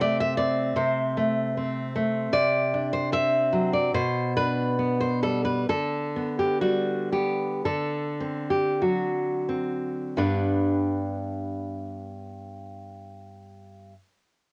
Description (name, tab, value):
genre	romantic piece for solo classical guitar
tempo	41-79 BPM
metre	4/4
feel	rubato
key	G major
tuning	A4 = 441 Hz
part	nylon-string guitar	solo	0.0-13.9 s	G2 to E5	-26 LUFS	equal	cassette tape
room	moderate booth ambience, RT60 0.3 s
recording	home recording on cassette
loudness	-26 LUFS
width	mono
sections	0.0-10.2 A section; 10.2-14.5 B section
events	slowing down 0.8-10.2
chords	0.0 Am/C; 2.3 D7/C; 3.9 G/B; 5.7 G/D; 7.7 D7; 10.2 G